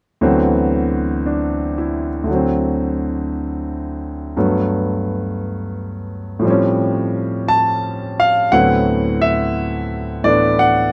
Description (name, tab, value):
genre	solo jazz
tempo	58 BPM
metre	4/4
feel	swing 67% on 8ths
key	D mixolydian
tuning	A4 = 441 Hz
part	warm concert grand piano	solo	0.2-10.9 s	D2 to A5	-18 LUFS	equal	none
room	light reverb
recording	close, detailed microphones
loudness	-18 LUFS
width	mono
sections	0.2-8.5 A section; 8.5-10.9 B section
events	none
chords	0.2 D13; 2.3 D7; 4.4 Gmaj9; 6.4 A7alt; 8.5 D13